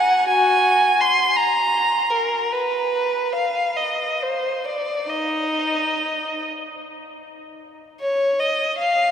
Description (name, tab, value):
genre	classical, free, expressive piece for unaccompanied violin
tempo	32-56 BPM (dotted quarters)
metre	6/8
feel	rubato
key	unclear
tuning	A4 = 441 Hz
part	warm violin	solo	0.0-9.1 s	Eb4 to C6	-18 LUFS	equal	none
room	wet cathedral reverb, RT60 6.2 s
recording	recorded in a church or concert hall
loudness	-18 LUFS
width	side -8 dB against mid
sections	0.0-8.0 A section; 8.0-9.1 B section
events	none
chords	none